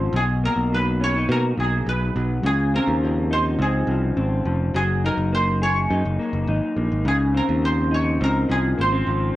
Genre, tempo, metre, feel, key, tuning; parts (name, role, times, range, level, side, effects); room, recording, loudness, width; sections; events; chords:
indie pop, bedroom pop; 104 BPM; 4/4; straight; Db major; A4 = 441 Hz
koto; melody; 0.0-9.4 s; Ab4 to Db5; -25 LUFS; right 1 dB; lush chorus, tape echo
electric guitar through a small old amp; accompaniment; 0.0-9.4 s; Cb3 to Ab4; -24 LUFS; left 2 dB; lush chorus, vibrato effect, cassette tape
modern bright picked electric bass; bass; 0.0-9.3 s; F1 to Cb3; -22 LUFS; equal
light reverb; home recording on cassette; -19 LUFS; side -15 dB against mid
0.0-9.4 A section
0.1 Cbmaj13; 2.4 Dbmaj9; 4.7 Gb69; 7.1 Dbmaj9